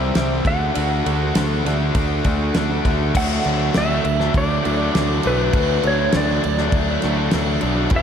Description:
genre	classic rock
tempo	100 BPM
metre	4/4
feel	straight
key	unclear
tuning	A4 = 440 Hz
part	clean lap steel guitar	melody	0.0-8.0 s	B4 to F#5	-24 LUFS	equal	slapback echo
part	overdriven electric guitar	riff	0.0-8.0 s	C3 to E4	-24 LUFS	left 10 dB	none
part	raw garage guitar	riff	0.0-8.0 s	E2 to G4	-25 LUFS	right 9 dB	overdrive, slapback echo
part	growling picked electric bass	bass	0.0-8.0 s	E1 to D2	-22 LUFS	equal	overdrive
part	damped 70s drum kit	drums	0.2-8.0 s	crash cymbal, kick drum, ride cymbal, snare drum	-23 LUFS	equal	none
part	string machine, violas	sustained chords	3.1-8.0 s	F#3 to B4	-32 LUFS	left 1 dB	none
room	moderate lush hall reverb, RT60 1.9 s, small room ambience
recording	big arena sound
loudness	-17 LUFS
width	side -8 dB against mid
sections	0.0-3.2 A section; 3.2-8.0 B section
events	none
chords	0.5 D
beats	0.15 | 0.75 1.35 1.95 2.55 | 3.15 3.75 4.35 4.95 | 5.55 6.14 6.74 7.34 | 7.93

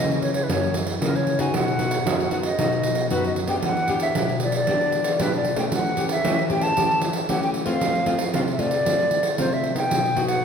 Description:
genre	samba and choro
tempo	115 BPM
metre	4/4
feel	straight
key	unclear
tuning	A4 = 441 Hz
part	hollow wooden flute	melody	0.0-10.4 s	A#4 to A5	-24 LUFS	equal	none
part	nylon-string guitar	accompaniment	0.0-10.4 s	F#2 to G4	-24 LUFS	left 3 dB	none
part	pandeiro	percussion	0.1-10.4 s	none	-25 LUFS	right 4 dB	none
room	wet scoring stage reverb, RT60 1.5 s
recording	recorded in a church or concert hall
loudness	-20 LUFS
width	side -7 dB against mid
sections	0.0-10.4 A section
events	none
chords	0.0 F#7; 1.5 B; 3.6 Em7; 5.7 A7/E; 7.8 F; 9.9 B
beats	0.49 1.02 | 1.54 2.06 2.59 3.11 | 3.63 4.16 4.68 5.20 | 5.73 6.25 6.77 7.30 | 7.82 8.35 8.87 9.39 | 9.92 10.44

